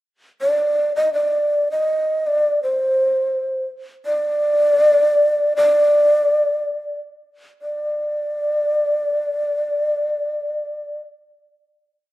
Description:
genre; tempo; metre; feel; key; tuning
japanese traditional, Japanese chamber music; 50-86 BPM; 2/4; rubato; unclear; A4 = 441 Hz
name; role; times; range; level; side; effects
breathy mellow long shakuhachi; solo; 0.4-11.0 s; C5 to Eb5; -17 LUFS; equal; none
room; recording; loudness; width
moderate recital hall reverb, RT60 1.6 s; dark, warm production; -16 LUFS; side -16 dB against mid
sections
0.0-1.2 pickup bar; 1.2-7.6 A section; 7.6-12.1 final note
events
slowing down 4.1-7.6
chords
none

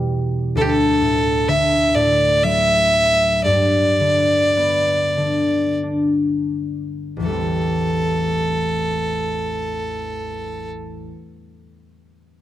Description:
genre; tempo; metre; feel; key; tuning
celtic folk, Celtic slow air; 41-67 BPM; 3/4; rubato; A dorian; A4 = 441 Hz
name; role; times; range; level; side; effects
concert harp; accompaniment; 0.0-11.1 s; A1 to D4; -20 LUFS; left 1 dB; none
rich fiddle; melody; 0.6-10.7 s; G4 to E5; -18 LUFS; right 1 dB; none
room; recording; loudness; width
moderate spring reverb, RT60 1.6 s; none; -16 LUFS; side -12 dB against mid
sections
0.0-7.2 A section; 7.2-11.5 B section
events
slowing down 0.6-7.2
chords
0.0 Em; 0.6 D; 3.4 G; 7.2 Am7

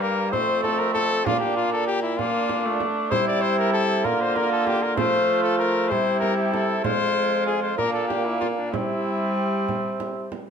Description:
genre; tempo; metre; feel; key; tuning
classical, renaissance-style consort dance; 64 BPM (dotted quarters); 6/8; straight; C mixolydian; A4 = 440 Hz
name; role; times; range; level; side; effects
warm cornet; melody; 0.0-9.7 s; D4 to D5; -25 LUFS; left 5 dB; none
mellow cor anglais; second line; 0.0-10.3 s; Bb3 to F4; -27 LUFS; right 6 dB; none
rich viola; accompaniment; 0.0-10.4 s; G3 to Bb3; -27 LUFS; left 1 dB; none
mellow bassoon; bass; 0.0-10.3 s; F2 to F3; -27 LUFS; right 1 dB; none
frame drum; percussion; 0.3-10.5 s; none; -33 LUFS; right 6 dB; none
room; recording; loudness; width
light reverb; minimal, uncompressed stereo recording; -20 LUFS; side -7 dB against mid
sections
0.0-10.5 A section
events
none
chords
0.3 F; 1.3 Bb; 3.1 C; 4.0 Bb/D; 5.0 F; 5.9 C; 6.8 Fm; 7.8 Bb; 8.7 C

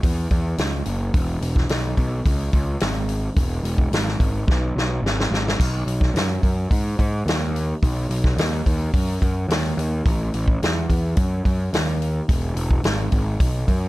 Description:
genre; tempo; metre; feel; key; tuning
blues rock power trio and southern rock; 108 BPM; 4/4; straight; E major; A4 = 443 Hz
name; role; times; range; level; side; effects
fuzz picked electric bass; bass; 0.0-13.9 s; E1 to G#2; -22 LUFS; equal; overdrive
vintage drum kit; drums; 0.0-13.8 s; hi-hat, kick drum, snare drum, splash cymbal; -21 LUFS; equal; none
room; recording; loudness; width
little or no reverb; none; -19 LUFS; side -18 dB against mid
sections
0.0-13.9 A section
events
drum fill 4.5-5.6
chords
none

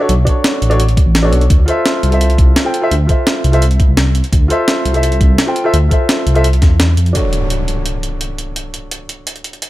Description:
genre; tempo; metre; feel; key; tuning
liquid drum and bass; 170 BPM; 4/4; straight; unclear; A4 = 441 Hz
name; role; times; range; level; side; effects
dark baby grand piano; accompaniment; 0.0-9.7 s; D4 to G5; -17 LUFS; equal; low-pass filter, tape echo
dark detuned saw bass; bass; 0.1-7.1 s; A1 to F2; -12 LUFS; equal; none
jungle sampler-style drum kit; drums; 0.1-9.7 s; hi-hat, snare drum; -18 LUFS; equal; none
electronic kick drum; drums; 0.3-6.7 s; none; -11 LUFS; equal; none
impact; sound effects; 7.1-8.6 s; none; -20 LUFS; equal; none
room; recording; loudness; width
little or no reverb; none; -10 LUFS; side -16 dB against mid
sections
0.0-7.2 A section; 7.2-9.7 B section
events
kick drops out 6.8-7.2; impact 7.2-8.6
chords
0.0 Bm9; 1.5 Dm9 (rootless); 7.2 Dmaj7

